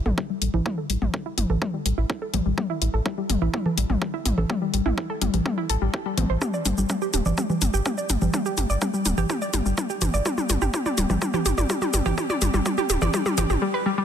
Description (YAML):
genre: melodic techno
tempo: 125 BPM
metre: 4/4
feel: straight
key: unclear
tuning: A4 = 440 Hz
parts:
  - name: warbly dusty pluck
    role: arpeggios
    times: 0.0-14.0 s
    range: G3 to D5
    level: -26 LUFS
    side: equal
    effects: chorus, vintage 12-bit sampler grit, sidechain pumping, digital delay
  - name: round analog bass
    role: bass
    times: 0.1-13.6 s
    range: D1 to A1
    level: -24 LUFS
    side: equal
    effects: sidechain pumping
  - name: house drum kit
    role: drums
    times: 0.1-13.6 s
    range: congas, hi-hat, shaker, toms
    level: -26 LUFS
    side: equal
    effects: overdrive
  - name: electronic kick drum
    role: drums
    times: 0.2-13.2 s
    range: none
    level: -29 LUFS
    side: right 1 dB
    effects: overdrive, high-pass filter on kick
room: light reverb, digital ambience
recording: dense, heavily limited modern master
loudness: -22 LUFS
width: side -9 dB against mid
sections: 0.0-14.0 A section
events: build-up 0.0-14.0; drum fill 0.0-13.6; filter sweep on synth arpeggio sound 0.0-14.0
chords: 0.0 A7(no3); 6.4 G5